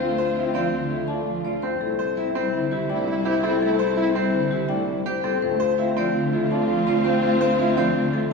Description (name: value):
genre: classical, minimalist pattern music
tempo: 166 BPM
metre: 5/4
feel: straight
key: D minor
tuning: A4 = 436 Hz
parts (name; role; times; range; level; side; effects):
- marimba with medium hard mallets; melody; 0.0-8.3 s; G4 to A5; -26 LUFS; left 8 dB; none
- clear French horn; second line; 0.0-8.3 s; E4 to F4; -26 LUFS; equal; none
- pipe organ, strings celeste; accompaniment; 0.0-8.1 s; D3 to C4; -30 LUFS; equal; none
- rich chamber string section; sustained chords; 0.0-8.3 s; C4 to F4; -32 LUFS; left 2 dB; none
- clear baby grand piano; arpeggios; 0.0-8.3 s; C4 to C5; -28 LUFS; right 4 dB; none
- warm cello; bass; 0.0-8.3 s; C2 to D2; -28 LUFS; right 2 dB; none
room: wet scoring stage reverb, RT60 1.5 s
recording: heard from further back in the room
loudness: -20 LUFS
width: side -4 dB against mid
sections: 0.0-8.3 A section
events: none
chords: 0.0 Dm7; 1.8 C6; 5.4 Dm7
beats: | 0.00 0.36 0.73 1.09 1.45 | 1.81 2.17 2.53 2.90 3.26 | 3.62 3.98 4.34 4.70 5.06 | 5.42 5.79 6.15 6.51 6.87 | 7.23 7.59 7.96 8.32